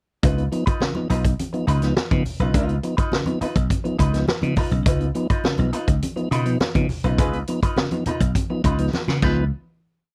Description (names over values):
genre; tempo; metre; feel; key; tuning
funk; 103 BPM; 4/4; straight; Db mixolydian; A4 = 443 Hz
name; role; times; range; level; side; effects
vintage hollow-body jazz guitar; accompaniment; 0.2-9.4 s; Eb4 to Cb5; -31 LUFS; equal; wah
mellow tonewheel organ; stabs; 0.2-9.4 s; Db3 to Eb4; -28 LUFS; equal; slow rotary speaker
slap bass; bass; 0.2-9.5 s; Cb2 to Db3; -24 LUFS; equal; none
vintage drum kit; drums; 0.2-9.4 s; crash cymbal, hi-hat, kick drum, snare drum; -25 LUFS; equal; none
congas; percussion; 0.2-9.5 s; none; -33 LUFS; equal; none
mellow horn section; second line; 7.2-9.4 s; Ab3 to Cb5; -31 LUFS; equal; none
room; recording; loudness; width
little or no reverb; dry, close 1970s-style studio recording; -22 LUFS; mono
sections
0.2-9.5 groove; 9.5-10.1 final hit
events
band accent 7.2-9.5; drum fill 8.9-9.5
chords
0.2 Db9; 9.5 N.C.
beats
| 0.23 0.81 1.39 1.97 | 2.54 3.12 3.70 4.28 | 4.86 5.44 6.02 6.61 | 7.19 7.77 8.35 8.93